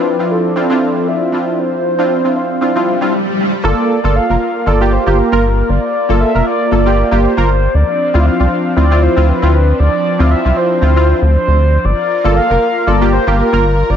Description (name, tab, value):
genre	deep house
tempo	117 BPM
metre	4/4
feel	swing 56% on 16ths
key	G dorian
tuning	A4 = 440 Hz
part	mellow horn-like synth lead	melody	0.0-14.0 s	A4 to F5	-17 LUFS	equal	lush chorus, dub echo
part	warm analog pad	sustained chords	0.0-14.0 s	F3 to D5	-21 LUFS	equal	chorus
part	warm analog keys	stabs	0.0-13.7 s	Bb3 to Bb4	-15 LUFS	equal	chorus, dub echo
part	swell	sound effects	2.8-3.6 s	none	-19 LUFS	left 2 dB	none
part	rubbery square bass	bass	3.6-14.0 s	F1 to D2	-12 LUFS	equal	none
room	light reverb, digital ambience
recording	nothing above 8.0 kHz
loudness	-11 LUFS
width	side -9 dB against mid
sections	0.0-3.6 A section; 3.6-14.0 B section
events	swell 2.8-3.6; drop 3.6-14.0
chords	0.0 Dm9; 3.6 Gm9; 7.7 Dm9; 11.8 Gm9